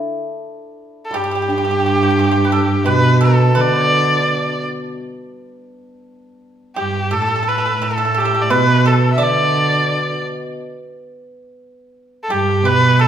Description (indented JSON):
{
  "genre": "chinese traditional, Chinese chamber ensemble",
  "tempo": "86 BPM",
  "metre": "4/4",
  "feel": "straight",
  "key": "G gong mode",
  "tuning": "A4 = 441 Hz",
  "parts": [
    { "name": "hammered dulcimer", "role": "accompaniment", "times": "0.0-10.6 s", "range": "B2 to A4", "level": "-23 LUFS", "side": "left 1 dB", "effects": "none" },
    { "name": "rich erhu", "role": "melody", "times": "1.1-13.1 s", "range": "G4 to E5", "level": "-17 LUFS", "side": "left 1 dB", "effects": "none" },
    { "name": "pipa", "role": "second line", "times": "1.1-13.1 s", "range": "G4 to D5", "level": "-21 LUFS", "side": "right 3 dB", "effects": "none" },
    { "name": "rich cello", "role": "second line", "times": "1.1-13.1 s", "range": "G2 to D3", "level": "-18 LUFS", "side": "right 2 dB", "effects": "none" }
  ],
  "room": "wet recital hall reverb, RT60 1.4 s",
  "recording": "recorded in a church or concert hall",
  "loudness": "-14 LUFS",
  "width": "side -9 dB against mid",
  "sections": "0.0-13.1 A section",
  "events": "none",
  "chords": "none"
}